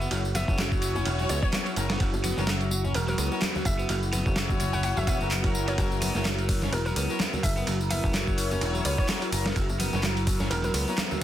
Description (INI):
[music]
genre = breakbeat, breaks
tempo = 127 BPM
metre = 4/4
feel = swing 56% on 16ths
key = unclear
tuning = A4 = 445 Hz
[part]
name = hollow square pluck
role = melody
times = 0.0-10.7 s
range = A#4 to F#5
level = -36 LUFS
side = equal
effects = chorus, small speaker sound, digital delay
[part]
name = phased analog pad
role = sustained chords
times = 0.0-11.2 s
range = F#3 to A#4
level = -34 LUFS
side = equal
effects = phaser, chorus, vintage 12-bit sampler grit, sidechain pumping
[part]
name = overdriven electric guitar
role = riff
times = 0.0-11.2 s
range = F#3 to C#4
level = -35 LUFS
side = equal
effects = tube saturation, digital delay
[part]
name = picked electric bass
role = bass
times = 0.0-10.8 s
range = E1 to C#2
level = -29 LUFS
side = equal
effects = tube saturation
[part]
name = punchy analog drum machine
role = drums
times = 0.0-11.2 s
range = handclaps, hi-hat, tambourine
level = -34 LUFS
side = equal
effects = none
[part]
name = dusty soul sampler-style drum kit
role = drums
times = 0.1-11.2 s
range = kick drum, ride cymbal, snare drum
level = -29 LUFS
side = equal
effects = overdrive
[part]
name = bongos and congas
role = percussion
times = 0.1-11.2 s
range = none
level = -38 LUFS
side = left 2 dB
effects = none
[part]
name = warm horn section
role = stabs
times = 0.5-11.0 s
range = C#4 to C#5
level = -35 LUFS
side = left 3 dB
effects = digital delay
[part]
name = swell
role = sound effects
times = 5.1-5.8 s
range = none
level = -39 LUFS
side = left 1 dB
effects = none
[sound]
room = light reverb, digital ambience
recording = dense, heavily limited modern master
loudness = -24 LUFS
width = side -12 dB against mid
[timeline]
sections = 0.0-11.2 A section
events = swell 5.1-5.8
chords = 0.0 F#7